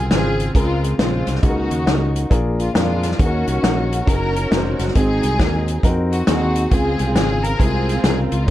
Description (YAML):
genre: uptempo gospel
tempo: 136 BPM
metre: 4/4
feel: swing 64% on 8ths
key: Db major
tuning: A4 = 440 Hz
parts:
  - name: warm studio string section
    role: melody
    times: 0.0-8.5 s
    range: Ab3 to Bb4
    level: -23 LUFS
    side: equal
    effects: plate reverb
  - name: warm upright piano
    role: accompaniment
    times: 0.0-8.5 s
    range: Ab2 to C5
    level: -23 LUFS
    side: left 2 dB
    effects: plate reverb
  - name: fingered electric bass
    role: bass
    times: 0.0-8.5 s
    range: F1 to F2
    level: -21 LUFS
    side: equal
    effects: none
  - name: natural country drum kit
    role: drums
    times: 0.1-8.5 s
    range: hi-hat, kick drum, snare drum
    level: -19 LUFS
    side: equal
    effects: none
room: light reverb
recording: dark, warm production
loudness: -16 LUFS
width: side -14 dB against mid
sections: 0.0-8.5 A section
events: none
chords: 0.0 Dbmaj7; 1.4 Gb6/Db; 2.3 Bb7; 3.2 Ebm7; 5.0 Ab7; 6.7 Dbmaj7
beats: 0.12 0.56 0.99 | 1.43 1.87 2.31 2.75 | 3.19 3.63 4.07 4.51 | 4.95 5.39 5.83 6.28 | 6.71 7.16 7.60 8.04 | 8.48